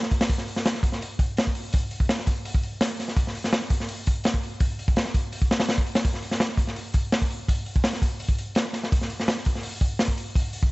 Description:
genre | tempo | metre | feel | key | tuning
drum and bass | 167 BPM | 4/4 | straight | none | none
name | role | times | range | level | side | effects
crunchy breakbeat drum kit | drums | 0.0-10.7 s | hi-hat, kick drum, snare drum | -22 LUFS | equal | none
room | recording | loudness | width
little or no reverb | nothing above 7.9 kHz | -23 LUFS | side -22 dB against mid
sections
0.0-10.7 A section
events
none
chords
none

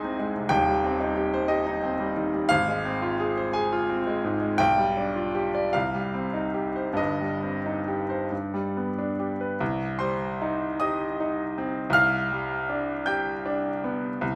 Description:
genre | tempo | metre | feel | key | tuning
classical, romantic nocturne for solo piano | 45-64 BPM (dotted quarters) | 6/8 | rubato | C minor | A4 = 440 Hz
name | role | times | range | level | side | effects
clear grand piano | solo | 0.0-14.4 s | Eb1 to G6 | -26 LUFS | equal | none
room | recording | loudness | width
moderate recital hall reverb, RT60 1.4 s | recorded in a church or concert hall | -27 LUFS | mono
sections
0.0-9.6 A section; 9.6-14.4 B section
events
none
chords
0.0 Ab/C; 0.5 Cm/Eb; 2.5 Fm/Ab; 4.6 G7/B; 5.7 Cm; 7.0 Cm/G; 8.3 G; 9.6 Cm; 11.9 G7/C

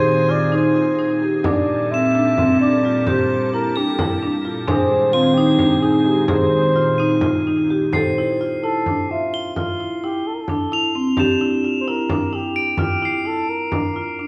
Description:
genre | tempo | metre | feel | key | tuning
contemporary instrumental, chamber music in an uneven meter | 260 BPM (eighths) | 7/8 | straight | unclear | A4 = 440 Hz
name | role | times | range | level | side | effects
breathy flugelhorn | melody | 0.0-14.2 s | F4 to E5 | -25 LUFS | equal | none
concert harp | second line | 0.0-14.1 s | C4 to Eb4 | -28 LUFS | equal | none
soft additive organ-like pad | sustained chords | 0.0-7.9 s | Bb2 to A4 | -27 LUFS | equal | ensemble chorus, built-in reverb
marimba with medium mallets | arpeggios | 0.0-14.3 s | C4 to E5 | -22 LUFS | equal | none
crotales | texture | 0.0-13.8 s | C7 to Bb7 | -30 LUFS | equal | none
frame drum | percussion | 0.1-14.1 s | none | -29 LUFS | equal | none
room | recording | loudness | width
wet recital hall reverb, RT60 1.4 s | none | -19 LUFS | mono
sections
0.0-7.9 A section; 7.9-14.3 B section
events
none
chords
0.0 Ab/Bb; 1.4 Gmadd9/Bb; 4.7 Ab/Bb; 7.9 Fmaj7; 11.2 Bb69

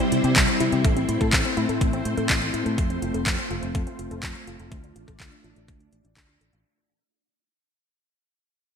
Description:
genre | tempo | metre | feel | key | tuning
italo disco | 124 BPM | 4/4 | straight | unclear | A4 = 439 Hz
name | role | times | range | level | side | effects
string machine, full ensemble | sustained chords | 0.0-6.6 s | G3 to D5 | -26 LUFS | left 1 dB | ensemble chorus
wide unison pluck | arpeggios | 0.0-6.6 s | G3 to F5 | -31 LUFS | left 2 dB | ping-pong delay
house drum kit | drums | 0.0-6.6 s | handclaps, hi-hat | -26 LUFS | equal | overdrive
fingered electric bass | bass | 0.1-6.6 s | F1 to C3 | -28 LUFS | equal | tube saturation
electronic kick drum | drums | 0.4-6.3 s | none | -25 LUFS | equal | overdrive
room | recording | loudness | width
moderate lush hall reverb, RT60 2.5 s | bright 1980s-style digital production | -21 LUFS | side -7 dB against mid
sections
0.0-6.7 A section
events
fade-out 0.0-6.7; filter sweep on synth arpeggio sound 0.0-6.7; filter sweep on string machine 0.0-6.7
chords
0.0 C; 0.8 Am; 2.8 F; 4.7 Dm

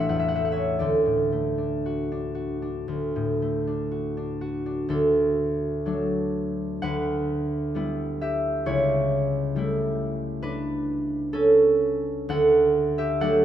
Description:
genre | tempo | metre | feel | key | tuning
classical, solo harp piece | 56-68 BPM | 4/4 | rubato | D major | A4 = 441 Hz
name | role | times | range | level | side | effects
concert harp | solo | 0.0-13.4 s | A1 to F#5 | -22 LUFS | right 1 dB | none
room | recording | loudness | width
moderate recital hall reverb, RT60 1.6 s | none | -22 LUFS | side -10 dB against mid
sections
0.0-4.9 A section; 4.9-13.4 A section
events
none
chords
0.0 A; 0.8 D; 6.8 Em7/D; 8.7 A7/C#; 12.3 D

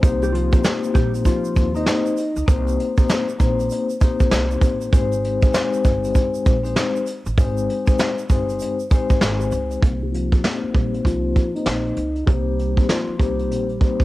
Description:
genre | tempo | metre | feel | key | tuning
hip hop, boom-bap hip-hop | 98 BPM | 4/4 | swing 62% on 16ths | C minor | A4 = 438 Hz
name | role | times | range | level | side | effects
vibraphone with soft mallets | accompaniment | 0.0-14.0 s | Ab3 to C5 | -23 LUFS | left 4 dB | cassette tape, low-pass filter
upright bass | bass | 0.0-13.8 s | G1 to Eb2 | -25 LUFS | right 1 dB | none
vintage brush drum kit | drums | 0.0-14.0 s | hi-hat, kick drum, snare drum | -18 LUFS | right 1 dB | cassette tape
egg shaker | percussion | 0.0-9.8 s | none | -43 LUFS | right 11 dB | none
mellow electric guitar | melody | 0.2-2.4, 10.0-14.0 s | F3 to Eb5 | -26 LUFS | equal | low-pass filter, cassette tape, tape echo
room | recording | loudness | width
light reverb, studio reverb | home recording on cassette | -17 LUFS | side -17 dB against mid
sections
0.0-9.8 A section; 9.8-14.0 B section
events
none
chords
0.0 Cm7; 4.9 Abmaj7; 9.8 Cm7

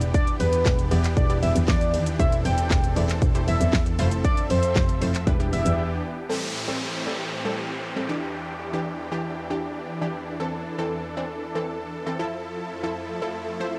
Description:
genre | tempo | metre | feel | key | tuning
dance-pop | 117 BPM | 4/4 | straight | A minor | A4 = 443 Hz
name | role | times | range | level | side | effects
unison pluck | accompaniment | 0.0-13.8 s | E3 to D5 | -33 LUFS | equal | sidechain pumping, cassette tape
supersaw chords | sustained chords | 0.0-13.8 s | E2 to E5 | -34 LUFS | equal | sidechain pumping, cassette tape
rich double bass | bass | 0.0-5.7 s | E1 to F2 | -26 LUFS | equal | sidechain pumping
pop drum kit | drums | 0.0-5.8 s | handclaps, hi-hat, kick drum, shaker, snare drum | -26 LUFS | equal | cassette tape
fat analog lead | melody | 0.1-5.9 s | B4 to G5 | -29 LUFS | equal | chorus, cassette tape
downlifter and swell | sound effects | 6.3-13.8 s | none | -36 LUFS | equal | none
room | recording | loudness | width
light reverb | home recording on cassette | -25 LUFS | mono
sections
0.0-6.3 A section; 6.3-13.8 B section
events
drop 0.0-6.3; break 5.8-6.3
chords
0.0 Em7; 2.2 C6/E; 4.0 Fmaj7; 5.3 Em7; 6.3 Am7; 8.1 Em7; 10.4 C6/E; 12.2 Fmaj7

